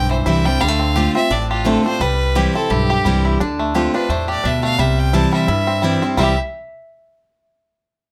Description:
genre	bluegrass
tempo	172 BPM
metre	4/4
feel	swing 56% on 8ths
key	C major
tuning	A4 = 441 Hz
part	clear fiddle	melody	0.0-6.4 s	F4 to A5	-24 LUFS	equal	none
part	picked steel-string acoustic guitar	accompaniment	0.0-6.3 s	G2 to F4	-21 LUFS	equal	none
part	bluegrass banjo	arpeggios	0.0-6.4 s	E3 to G4	-24 LUFS	equal	none
part	upright bass	bass	0.0-6.4 s	A1 to G2	-23 LUFS	equal	none
room	light reverb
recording	close, detailed microphones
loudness	-17 LUFS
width	mono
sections	0.0-3.4 A section; 3.4-6.2 B section; 6.2-7.6 C section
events	none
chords	0.0 C; 0.6 Dm7; 2.0 C; 3.4 Dm7; 4.8 C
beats	0.26 | 0.61 0.96 1.31 1.66 | 2.00 2.35 2.70 3.05 | 3.40 3.75 4.09 4.44 | 4.79 5.14 5.48 5.83 | 6.18

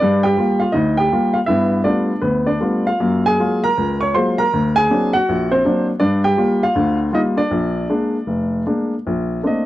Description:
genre	solo jazz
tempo	159 BPM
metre	4/4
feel	swing 64% on 8ths, rubato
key	unclear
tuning	A4 = 445 Hz
part	warm baby grand piano	solo	0.0-9.7 s	F1 to Db6	-15 LUFS	equal	none
room	studio ambience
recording	dry, close 1970s-style studio recording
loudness	-15 LUFS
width	side -15 dB against mid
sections	0.0-9.1 A section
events	none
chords	0.0 Gm7; 1.5 G9; 3.0 Gbmaj9; 4.5 Daug7; 6.0 Gm7; 7.5 Bb7; 9.1 Bbmaj9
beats	| 0.02 0.38 0.76 1.12 | 1.49 1.86 2.24 2.62 | 3.01 3.40 3.78 4.16 | 4.54 4.91 5.28 5.64 | 6.01 6.38 6.76 7.13 | 7.51 7.90 8.28 8.67 | 9.06 9.44

